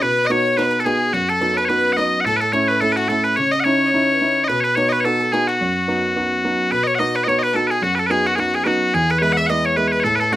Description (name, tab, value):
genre	celtic folk, Celtic reel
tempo	216 BPM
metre	4/4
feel	swing 56% on 8ths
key	B mixolydian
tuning	A4 = 436 Hz
part	loud bright bagpipes	melody	0.0-10.4 s	F#4 to F#5	-18 LUFS	left 1 dB	none
part	clear fiddle	second line	0.0-10.4 s	F#4 to E5	-26 LUFS	left 5 dB	none
part	mandolin	second line	0.0-10.4 s	F#4 to E5	-30 LUFS	right 4 dB	none
part	dark grand piano	accompaniment	0.0-10.4 s	E2 to F#4	-21 LUFS	right 2 dB	none
room	moderate studio reverb, RT60 0.5 s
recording	rough home demo mix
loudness	-16 LUFS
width	side -14 dB against mid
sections	0.0-6.7 A section; 6.7-10.4 B section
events	none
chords	0.0 B; 2.3 A; 3.4 C#madd9; 4.5 B; 8.9 E